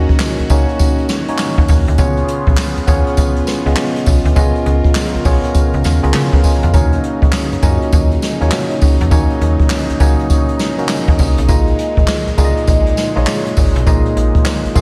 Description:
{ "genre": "R&B, new jack swing", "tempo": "101 BPM", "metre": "4/4", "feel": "swing 63% on 16ths", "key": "Eb minor", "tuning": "A4 = 441 Hz", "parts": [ { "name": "tine electric piano", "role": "accompaniment", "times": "0.0-14.8 s", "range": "Bb3 to Ab5", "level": "-21 LUFS", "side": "equal", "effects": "slapback echo" }, { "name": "phased analog pad", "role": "sustained chords", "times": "0.0-14.8 s", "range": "Bb2 to Bb4", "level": "-26 LUFS", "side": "equal", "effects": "phaser, chorus" }, { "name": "slap-like FM bass", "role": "bass", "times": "0.0-14.8 s", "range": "Ab1 to Db3", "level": "-18 LUFS", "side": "equal", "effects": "none" }, { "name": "jazz brush drum kit", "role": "drums", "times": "0.1-14.8 s", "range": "handclaps, hi-hat, kick drum, snare drum, tambourine", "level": "-17 LUFS", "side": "equal", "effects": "none" } ], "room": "light reverb, studio reverb", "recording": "none", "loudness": "-14 LUFS", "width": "mono", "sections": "0.0-14.8 A section", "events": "none", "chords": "0.0 Ebm7; 2.0 Db7; 6.7 Ebm7; 11.5 Bb7sus4" }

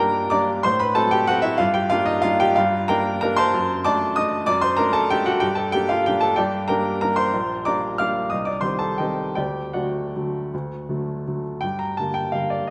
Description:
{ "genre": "classical, piano waltz", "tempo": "153-200 BPM", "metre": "3/4", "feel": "rubato", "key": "G minor from 3.5 s", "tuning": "A4 = 436 Hz", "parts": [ { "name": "clear baby grand piano", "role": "solo", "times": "0.0-12.7 s", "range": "Bb1 to F6", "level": "-22 LUFS", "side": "equal", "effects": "none" } ], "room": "wet scoring stage reverb, RT60 2.1 s", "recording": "none", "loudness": "-22 LUFS", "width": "mono", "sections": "0.0-11.6 A section; 11.6-12.7 B section", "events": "none", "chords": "0.0 Gm; 0.6 F#dim/A; 1.6 Gm; 3.5 D7/F#; 5.4 Gm; 7.3 Gm/Bb; 8.3 Cm; 9.4 D; 11.6 Gm" }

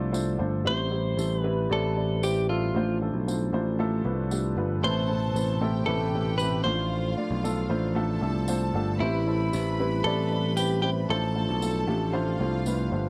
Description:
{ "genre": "piano-driven pop", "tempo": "115 BPM", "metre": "4/4", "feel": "straight", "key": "unclear", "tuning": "A4 = 441 Hz", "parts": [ { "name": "clean electric guitar", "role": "melody", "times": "0.0-12.6 s", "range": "E4 to C5", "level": "-32 LUFS", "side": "equal", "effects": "none" }, { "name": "dark upright piano", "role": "accompaniment", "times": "0.0-13.1 s", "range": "A2 to D5", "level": "-32 LUFS", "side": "equal", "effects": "none" }, { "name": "mellow tonewheel organ", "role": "sustained chords", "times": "0.0-13.1 s", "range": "none", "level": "barely audible", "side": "none", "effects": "none" }, { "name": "picked electric bass", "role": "bass", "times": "0.0-13.1 s", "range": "G1 to C2", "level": "-30 LUFS", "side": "equal", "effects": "none" }, { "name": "tambourine", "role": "percussion", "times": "0.1-12.8 s", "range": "none", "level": "-44 LUFS", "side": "equal", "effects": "none" }, { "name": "clear studio violin section", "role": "second line", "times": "4.8-13.1 s", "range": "F4 to B5", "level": "-39 LUFS", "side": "equal", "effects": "none" } ], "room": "small room reverb", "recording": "dry, close 1970s-style studio recording", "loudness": "-27 LUFS", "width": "mono", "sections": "0.0-13.1 A section", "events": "none", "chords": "0.0 F6; 0.7 C/A; 2.7 F6/A; 4.8 Amadd9; 6.7 F6/A; 9.0 C/A; 11.1 F6/A" }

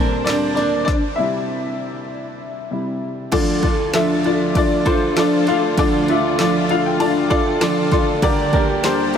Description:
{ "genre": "piano-driven pop", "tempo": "98 BPM", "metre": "4/4", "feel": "straight", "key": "D minor", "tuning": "A4 = 441 Hz", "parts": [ { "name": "warm upright piano", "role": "accompaniment", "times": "0.0-9.2 s", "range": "D2 to C6", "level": "-18 LUFS", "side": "left 2 dB", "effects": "analog chorus" }, { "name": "warm symphonic string section", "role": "sustained chords", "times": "0.0-9.2 s", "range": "D2 to G4", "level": "-28 LUFS", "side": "left 1 dB", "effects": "none" }, { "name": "picked steel-string acoustic guitar", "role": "riff", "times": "0.0-9.2 s", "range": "D3 to Bb4", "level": "-24 LUFS", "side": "right 8 dB", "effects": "none" }, { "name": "deep house drum kit", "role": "drums", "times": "0.3-9.2 s", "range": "crash cymbal, handclaps, kick drum, ride cymbal, snare drum", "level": "-23 LUFS", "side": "equal", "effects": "none" } ], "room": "moderate huge ambient reverb, RT60 7.3 s", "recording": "dreamy mix soaked in reverb", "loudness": "-16 LUFS", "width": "side -8 dB against mid", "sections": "0.0-3.3 A section; 3.3-9.2 A section", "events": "upright piano solo 0.0-3.3; stop 0.9-3.3; upright piano fill 6.4-8.2", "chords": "0.0 Gm/D; 0.9 C; 3.3 Dm; 8.2 Gm/D" }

